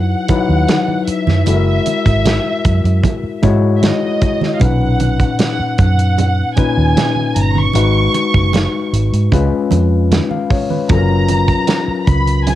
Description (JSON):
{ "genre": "lush 1970s-style soul", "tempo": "76 BPM", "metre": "4/4", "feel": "straight", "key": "unclear", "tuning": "A4 = 440 Hz", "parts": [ { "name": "warm studio violin section", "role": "melody", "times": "0.0-12.6 s", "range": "D#5 to C#6", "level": "-20 LUFS", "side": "right 1 dB", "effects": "cassette tape" }, { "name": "overdriven tine electric piano", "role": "accompaniment", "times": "0.0-12.6 s", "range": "A#2 to E#5", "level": "-18 LUFS", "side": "left 6 dB", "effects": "cassette tape" }, { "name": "vintage muted fingered electric bass", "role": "bass", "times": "0.0-12.6 s", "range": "F#1 to G#2", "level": "-14 LUFS", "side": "right 1 dB", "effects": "none" }, { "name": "modern studio drum kit", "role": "drums", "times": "0.3-12.6 s", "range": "hi-hat, kick drum, snare drum", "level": "-17 LUFS", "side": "right 1 dB", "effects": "cassette tape" }, { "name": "congas", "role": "percussion", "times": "0.3-12.6 s", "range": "none", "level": "-22 LUFS", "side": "right 8 dB", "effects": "none" } ], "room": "light reverb", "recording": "home recording on cassette", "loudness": "-12 LUFS", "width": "side -13 dB against mid", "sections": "0.0-12.6 A section", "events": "none", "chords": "0.0 C#m11 (rootless); 1.5 F#9; 4.6 Bmaj9; 7.8 G#m7; 9.3 C#7; 10.9 F#maj7", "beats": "0.69 | 1.47 2.25 3.04 3.83 | 4.61 5.40 6.18 6.97 | 7.75 8.54 9.33 10.11 | 10.90 11.69 12.47" }